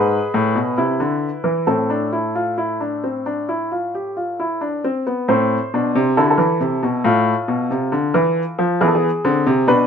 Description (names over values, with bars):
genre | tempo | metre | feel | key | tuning
classical, baroque-style 3-part fugue for grand piano | 68 BPM | 4/4 | straight | A minor | A4 = 440 Hz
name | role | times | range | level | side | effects
warm baby grand piano | solo | 0.0-9.9 s | G#2 to C5 | -16 LUFS | equal | none
room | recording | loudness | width
light reverb | nothing above 10.5 kHz | -17 LUFS | side -7 dB against mid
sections
0.0-5.3 A section; 5.3-9.9 B section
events
none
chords
0.0 E7/G#; 1.7 Am; 7.1 Bm7b5/A; 8.8 E